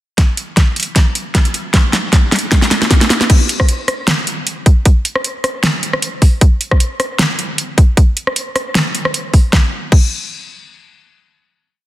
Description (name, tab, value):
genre	future bass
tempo	154 BPM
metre	4/4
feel	swing 54% on 16ths, half-time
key	none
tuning	none
part	electronic kick drum	drums	0.2-10.0 s	none	-10 LUFS	equal	overdrive
part	pop drum kit	drums	0.2-10.0 s	crash cymbal, hi-hat, rim click, snare drum	-15 LUFS	equal	soft clipping on snare
room	light reverb, digital ambience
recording	dense, heavily limited modern master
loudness	-11 LUFS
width	side -15 dB against mid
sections	0.2-3.3 build; 3.3-9.5 drop; 9.5-11.1 final hit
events	build-up 0.2-3.3; drum fill 0.2-3.3; drop 3.3-9.5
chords	none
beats	| 0.18 0.57 0.96 1.35 | 1.74 2.13 2.52 2.91 | 3.30 3.69 4.08 4.47 | 4.86 5.25 5.63 6.02 | 6.41 6.80 7.19 7.58 | 7.97 8.36 8.75 9.14 | 9.53 9.92